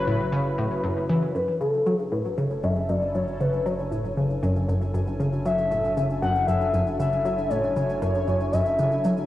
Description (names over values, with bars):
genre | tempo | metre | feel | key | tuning
ambient, sequencer-driven space music | 117 BPM | 4/4 | straight | F# minor | A4 = 440 Hz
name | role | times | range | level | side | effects
expressive synth lead | melody | 0.0-9.3 s | A4 to F#5 | -26 LUFS | left 2 dB | chorus, cassette tape, analog delay
sweeping resonant pad | sustained chords | 0.0-9.3 s | C#3 to B4 | -31 LUFS | equal | chorus, cassette tape
warm sub bass | bass | 0.0-9.3 s | F#1 | -36 LUFS | equal | none
analog pluck | riff | 0.1-9.1 s | F#2 to F#3 | -25 LUFS | equal | chorus, cassette tape, analog delay
shaker and congas | percussion | 1.4-9.3 s | none | -40 LUFS | left 1 dB | cassette tape
pulsing gated texture | texture | 1.4-9.3 s | G#5 | -45 LUFS | right 1 dB | chorus, built-in reverb, cassette tape
room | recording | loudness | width
wet spring reverb, RT60 2.5 s | home recording on cassette, studio reverb | -22 LUFS | side -14 dB against mid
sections
0.0-1.4 A section; 1.4-9.3 B section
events
fade-in on analog synth pad 1.4-9.3; fade-in on synth texture 1.4-9.3; fade-in on drum 1.4-9.3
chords
0.0 F#m7